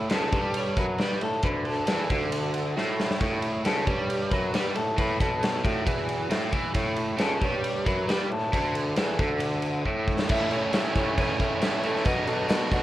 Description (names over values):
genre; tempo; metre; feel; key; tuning
indie rock; 136 BPM; 4/4; straight; A major; A4 = 440 Hz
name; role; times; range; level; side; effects
raw garage guitar; riff; 0.0-12.8 s; A2 to F#4; -29 LUFS; right 1 dB; overdrive
warm bassoon; bass; 0.0-12.8 s; B1 to B2; -31 LUFS; equal; none
electric guitar through a small old amp; melody; 0.1-12.8 s; F#4 to E5; -32 LUFS; equal; spring reverb, tape echo
big rock drum kit; drums; 0.1-12.8 s; crash cymbal, kick drum, ride cymbal, snare drum; -28 LUFS; equal; none
tambourine; percussion; 10.3-12.8 s; none; -48 LUFS; left 3 dB; none
room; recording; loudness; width
little or no reverb; worn, warbling old tape, cassette tape, warbly pitch drift; -24 LUFS; side -14 dB against mid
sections
0.0-10.3 A section; 10.3-12.8 B section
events
drum fill 2.8-3.2, 9.9-10.3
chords
0.0 A; 12.1 Bm7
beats
0.11 0.55 0.99 | 1.44 1.88 2.32 2.76 | 3.21 3.65 4.09 4.54 | 4.98 5.42 5.87 6.31 | 6.75 7.20 7.64 8.08 | 8.52 8.97 9.41 9.85 | 10.29 10.73 11.18 11.62 | 12.06 12.50